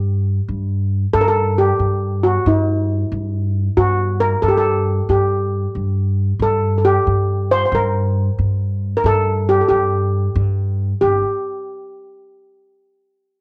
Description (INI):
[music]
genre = Persian modal ensemble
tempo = 91 BPM (dotted quarters)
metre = 6/8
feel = straight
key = G avaz esfahan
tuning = A4 = 439 Hz
[part]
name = steel pan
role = melody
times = 0.0-11.2 s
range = E4-50c to C5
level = -20 LUFS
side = equal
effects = none
[part]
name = upright bass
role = bass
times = 0.0-11.2 s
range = G1 to G2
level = -21 LUFS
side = equal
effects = none
[sound]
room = light reverb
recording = worn, warbling old tape, cassette tape, warbly pitch drift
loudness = -18 LUFS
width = mono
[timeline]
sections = 0.5-11.0 A section; 11.0-12.3 B section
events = none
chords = none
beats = | 0.48 1.14 | 1.80 2.46 | 3.11 3.77 | 4.43 5.09 | 5.75 6.40 | 7.06 7.72 | 8.38 9.04 | 9.70 10.35 | 11.01